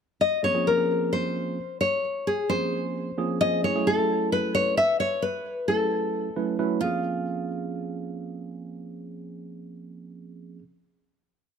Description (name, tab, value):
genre	jazz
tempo	264 BPM (eighths)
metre	7/8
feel	straight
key	unclear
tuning	A4 = 440 Hz
part	nylon-string guitar	melody	0.2-10.6 s	F4 to Fb5	-25 LUFS	left 2 dB	plate reverb
part	tine electric piano	accompaniment	0.4-10.6 s	F3 to Cb5	-29 LUFS	right 4 dB	wide subtle chorus, plate reverb
room	moderate studio reverb, RT60 0.5 s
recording	none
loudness	-23 LUFS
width	side -7 dB against mid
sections	0.0-0.4 pickup bar; 0.4-6.8 groove; 6.8-10.0 final chord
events	none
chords	0.4 Bbm9; 3.6 Gbm7; 6.8 Bbm9